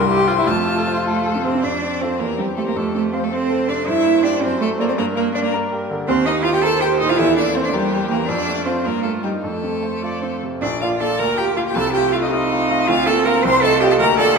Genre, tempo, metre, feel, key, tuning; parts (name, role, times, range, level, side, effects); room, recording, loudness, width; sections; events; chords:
quick classical-period movement for piano quartet; 107 BPM (dotted quarters); 6/8; rubato; F major; A4 = 440 Hz
clear violin; melody; 0.0-14.4 s; G4 to C6; -24 LUFS; left 9 dB
clear cello; second line; 0.0-14.4 s; G3 to C5; -19 LUFS; right 5 dB
bright concert grand piano; accompaniment; 0.0-14.4 s; Bb1 to A5; -22 LUFS; left 1 dB
clear viola; accompaniment; 0.0-14.4 s; Bb3 to D5; -26 LUFS; right 1 dB
wet scoring stage reverb, RT60 1.8 s; -16 LUFS; side -5 dB against mid
0.0-1.6 A section; 1.6-10.6 B section; 10.6-14.4 A section
0.5 F; 2.2 C/E; 2.8 F; 3.9 Gm; 4.4 D7/F#; 5.0 Gm; 6.1 Cm7/Eb; 7.2 C7/E; 8.3 F; 8.8 Eb/G; 9.4 F; 10.6 Bb; 11.2 Bb/D; 11.8 F7/C; 12.9 Bb/D; 13.4 F7/C